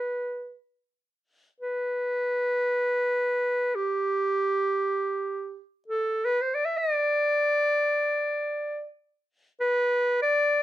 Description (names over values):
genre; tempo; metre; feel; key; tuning
Turkish makam ensemble; free time; none; none; unclear; A4 = 440 Hz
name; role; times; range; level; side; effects
clear clarinet; solo; 0.0-10.6 s; G4 to E5; -24 LUFS; equal; none
room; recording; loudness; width
light reverb; none; -24 LUFS; side -14 dB against mid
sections
0.0-10.6 A section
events
none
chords
none